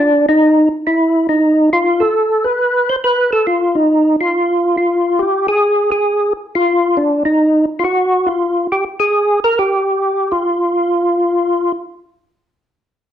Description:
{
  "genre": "jazz",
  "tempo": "138 BPM",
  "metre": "4/4",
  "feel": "swing 66% on 8ths",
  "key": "unclear",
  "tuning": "A4 = 437 Hz",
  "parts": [
    { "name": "percussive tonewheel organ", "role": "solo", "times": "0.0-11.7 s", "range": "D4 to C5", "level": "-12 LUFS", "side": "equal", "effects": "slow rotary speaker, chorus vibrato" }
  ],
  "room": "moderate large studio reverb, RT60 0.8 s",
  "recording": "dark, warm production",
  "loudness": "-12 LUFS",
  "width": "side -10 dB against mid",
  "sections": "0.0-5.2 A section; 5.2-12.2 B section",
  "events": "none",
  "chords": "none"
}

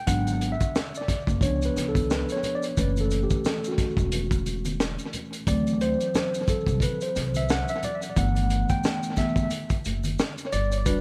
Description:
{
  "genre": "hip hop, jazz-hop",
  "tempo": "89 BPM",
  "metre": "4/4",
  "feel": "swing 57% on 16ths",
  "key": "unclear",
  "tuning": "A4 = 437 Hz",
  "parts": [
    { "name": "mellow tine electric piano", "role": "accompaniment", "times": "0.0-11.0 s", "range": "E3 to G5", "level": "-30 LUFS", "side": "equal", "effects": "tape echo" },
    { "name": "upright bass", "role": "bass", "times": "0.1-11.0 s", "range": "E1 to D2", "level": "-30 LUFS", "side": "equal", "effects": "none" },
    { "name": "crunchy breakbeat drum kit", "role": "drums", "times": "0.1-11.0 s", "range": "hi-hat, kick drum, snare drum", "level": "-30 LUFS", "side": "equal", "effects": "tape echo" },
    { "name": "maracas and congas", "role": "percussion", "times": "0.1-11.0 s", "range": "none", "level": "-41 LUFS", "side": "equal", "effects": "tape echo" }
  ],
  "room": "light reverb, small room ambience",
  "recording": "echo-heavy mix",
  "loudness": "-26 LUFS",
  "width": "mono",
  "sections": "0.0-11.0 A section",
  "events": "tine electric piano solo 0.0-11.0",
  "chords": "0.1 G#m7b5; 1.4 C#7b9; 2.8 F#m7; 5.5 D7; 8.2 G69"
}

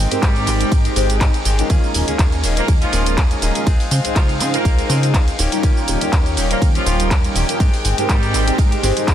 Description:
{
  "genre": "filtered disco house",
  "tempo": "122 BPM",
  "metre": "4/4",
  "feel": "swing 54% on 16ths",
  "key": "Eb mixolydian",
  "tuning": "A4 = 440 Hz",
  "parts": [
    { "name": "warm studio violin section", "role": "sustained chords", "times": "0.0-9.1 s", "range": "Ab3 to G5", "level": "-27 LUFS", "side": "equal", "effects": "sidechain pumping" },
    { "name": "direct-recorded clean electric guitar", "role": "riff", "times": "0.0-9.1 s", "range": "Eb3 to Ab4", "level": "-27 LUFS", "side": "left 5 dB", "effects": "sidechain pumping" },
    { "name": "plucky analog bass", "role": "bass", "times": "0.0-9.1 s", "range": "Eb1 to Db3", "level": "-20 LUFS", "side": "equal", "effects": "sidechain pumping" },
    { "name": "mellow synth brass", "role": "accompaniment", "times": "0.1-9.1 s", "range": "G3 to Eb5", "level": "-22 LUFS", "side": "equal", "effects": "chorus, phaser, sidechain pumping" },
    { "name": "house drum kit", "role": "drums", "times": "0.1-9.1 s", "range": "handclaps, hi-hat, ride cymbal, shaker", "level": "-23 LUFS", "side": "right 1 dB", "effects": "sidechain pumping on hats, sidechain pumping on perc, sidechain pumping on cymbals" },
    { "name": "clear horn section", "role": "melody", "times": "0.2-8.6 s", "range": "F3 to Bb4", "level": "-27 LUFS", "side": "equal", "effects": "sidechain pumping, ping-pong delay" },
    { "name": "electronic kick drum", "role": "drums", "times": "0.2-9.1 s", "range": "none", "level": "-16 LUFS", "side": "equal", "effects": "none" }
  ],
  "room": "light reverb, digital ambience",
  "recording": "dense, heavily limited modern master",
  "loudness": "-14 LUFS",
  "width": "side -10 dB against mid",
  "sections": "0.0-9.1 A section",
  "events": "none",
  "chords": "0.0 Abmaj7; 1.7 Eb7sus4; 3.7 Dbmaj7; 5.4 Eb7; 7.6 Abmaj7"
}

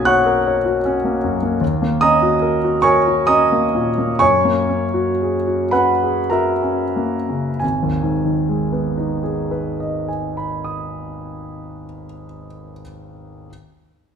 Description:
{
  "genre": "classical, impressionist solo piano",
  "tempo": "44-79 BPM",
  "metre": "3/4",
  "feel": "rubato",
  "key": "G# minor",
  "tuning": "A4 = 438 Hz",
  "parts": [
    { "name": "clear grand piano", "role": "solo", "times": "0.0-13.5 s", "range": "G#1 to G#6", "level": "-16 LUFS", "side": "equal", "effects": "none" }
  ],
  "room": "wet recital hall reverb, RT60 1.5 s",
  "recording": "minimal, uncompressed stereo recording",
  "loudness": "-16 LUFS",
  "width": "side -7 dB against mid",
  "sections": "0.0-7.6 A section; 7.6-11.4 B section",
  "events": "slowing down 0.5-7.6",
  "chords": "0.0 F#add9/B; 1.6 D#m7; 4.2 F#add9; 7.6 G#m"
}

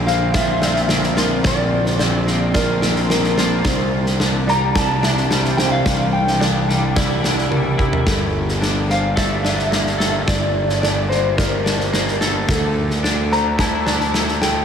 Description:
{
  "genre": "post-rock",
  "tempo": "109 BPM",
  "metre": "4/4",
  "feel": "straight",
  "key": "G dorian",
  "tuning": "A4 = 440 Hz",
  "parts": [
    { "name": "shimmering ambient pad", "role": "sustained chords", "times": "0.0-8.0 s", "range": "C3 to D4", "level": "-27 LUFS", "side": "equal", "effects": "chorus, built-in reverb, phaser" },
    { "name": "twangy electric guitar", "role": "arpeggios", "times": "0.0-14.6 s", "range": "G2 to A4", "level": "-26 LUFS", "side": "left 1 dB", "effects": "analog chorus, diffuse ambient delay" },
    { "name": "fuzz picked electric bass", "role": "bass", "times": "0.0-14.6 s", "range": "G1 to D2", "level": "-21 LUFS", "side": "equal", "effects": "overdrive" },
    { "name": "electric slide guitar", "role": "melody", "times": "0.1-14.6 s", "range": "Bb4 to Bb5", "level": "-23 LUFS", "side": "left 1 dB", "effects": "lush chorus, diffuse ambient delay" },
    { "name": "felt-muted upright piano", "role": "arpeggios", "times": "0.1-14.6 s", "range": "A4 to E5", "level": "-29 LUFS", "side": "right 3 dB", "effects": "analog chorus, diffuse ambient delay" },
    { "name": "big rock drum kit", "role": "drums", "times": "0.1-14.5 s", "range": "kick drum, snare drum, toms", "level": "-20 LUFS", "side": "equal", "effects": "none" }
  ],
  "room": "wet huge ambient reverb, RT60 3.9 s",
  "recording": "dreamy mix soaked in reverb",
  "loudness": "-15 LUFS",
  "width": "side -8 dB against mid",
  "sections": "0.0-8.1 A section; 8.1-14.6 A section",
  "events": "drum fill 7.5-8.1",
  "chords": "0.0 Bbadd9; 3.7 Cadd9; 8.1 Gmadd9; 12.5 Dsus2"
}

